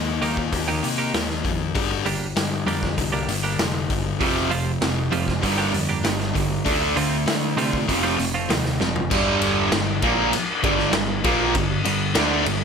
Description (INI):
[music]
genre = quiet-loud alternative rock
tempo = 98 BPM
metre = 4/4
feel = straight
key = G minor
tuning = A4 = 440 Hz
[part]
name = thick fuzz guitar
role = riff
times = 0.0-12.6 s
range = F2 to D4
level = -25 LUFS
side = left 12 dB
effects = distortion
[part]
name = overdriven picked electric bass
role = bass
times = 0.0-12.6 s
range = F1 to D3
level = -29 LUFS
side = equal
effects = none
[part]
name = twelve-string electric guitar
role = arpeggios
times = 0.2-8.7 s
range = D3 to G4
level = -27 LUFS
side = right 5 dB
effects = plate reverb
[part]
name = raw garage drum kit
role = drums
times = 0.2-12.6 s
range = crash cymbal, hi-hat, kick drum, ride cymbal, snare drum, toms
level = -25 LUFS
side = equal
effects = none
[part]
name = fuzz guitar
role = riff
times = 4.2-12.6 s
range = F2 to D4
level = -24 LUFS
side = right 12 dB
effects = distortion
[sound]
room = moderate studio reverb, RT60 0.6 s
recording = none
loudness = -19 LUFS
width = side -6 dB against mid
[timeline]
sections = 0.0-9.1 A section; 9.1-12.6 B section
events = drum fill 8.8-9.1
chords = 0.0 Eb; 1.8 Gm; 4.2 Fsus2; 5.4 Gm; 6.7 Dm7; 7.9 F; 9.1 Gm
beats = 0.52 1.14 | 1.75 2.37 2.98 3.60 | 4.21 4.82 5.43 6.05 | 6.66 7.27 7.88 8.50 | 9.11 9.72 10.33 10.94 | 11.55 12.16